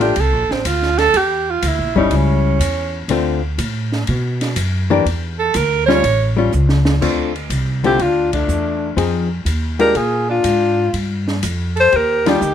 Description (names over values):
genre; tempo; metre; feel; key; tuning
jazz, small-group swing and bop; 122 BPM; 4/4; swing 69% on 8ths; D minor; A4 = 440 Hz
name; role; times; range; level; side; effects
bright alto saxophone; second line; 0.0-12.5 s; A3 to C#5; -19 LUFS; right 6 dB; none
archtop guitar, miked and amplified; accompaniment; 0.0-12.4 s; D3 to Ab4; -17 LUFS; left 6 dB; none
upright bass; bass; 0.0-12.5 s; G1 to B2; -19 LUFS; equal; none
open jazz drum kit; drums; 0.0-12.5 s; crash cymbal, hi-hat, kick drum, ride cymbal, snare drum; -25 LUFS; equal; none
breathy alto saxophone; melody; 7.9-12.5 s; D4 to C5; -15 LUFS; left 3 dB; plate reverb
room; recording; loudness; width
light reverb; none; -14 LUFS; side -9 dB against mid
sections
0.0-7.0 A section; 7.0-12.5 B section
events
alto saxophone solo 0.0-7.0; drum fill 6.5-7.0; band accent 8.2, 12.2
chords
0.0 Bbmaj7; 1.1 Em7b5; 2.1 C#dim; 3.1 Dm7; 4.1 B5; 5.1 Dmadd9; 6.0 A7b13; 7.0 Dm7; 9.0 Fm7; 10.0 Bb7; 10.9 Ebmaj9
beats
0.16 0.65 | 1.14 1.63 2.12 2.61 | 3.10 3.59 4.08 4.57 | 5.06 5.55 6.04 6.53 | 7.02 7.51 8.00 8.49 | 8.98 9.47 9.96 10.45 | 10.94 11.43 11.92 12.41